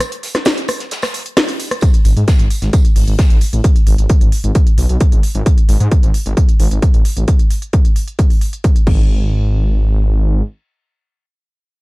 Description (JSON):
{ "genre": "driving peak-time techno", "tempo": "132 BPM", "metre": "4/4", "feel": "straight", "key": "G# phrygian", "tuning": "A4 = 440 Hz", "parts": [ { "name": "gated 80s drum kit", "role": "drums", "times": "0.0-3.5 s", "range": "hi-hat, snare drum, tambourine", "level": "-29 LUFS", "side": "equal", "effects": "high-pass filter on hats, high-pass filter on snare, high-pass filter on perc, high-pass filter on room" }, { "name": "techno drum kit", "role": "drums", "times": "0.0-9.0 s", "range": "crash cymbal, hi-hat, rim click, snare drum", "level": "-21 LUFS", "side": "equal", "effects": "none" }, { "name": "electronic kick drum", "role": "drums", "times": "1.8-9.0 s", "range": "none", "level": "-11 LUFS", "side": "equal", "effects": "none" }, { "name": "detuned saw bass", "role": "bass", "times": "2.0-10.4 s", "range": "G#1 to G#2", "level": "-14 LUFS", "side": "equal", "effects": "sidechain pumping" } ], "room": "little or no reverb", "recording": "dark, warm production", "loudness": "-11 LUFS", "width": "side -23 dB against mid", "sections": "0.0-1.8 A section; 1.8-9.1 B section; 9.1-11.8 C section", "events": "drop 0.0-1.8; break 0.0-1.8", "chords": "none" }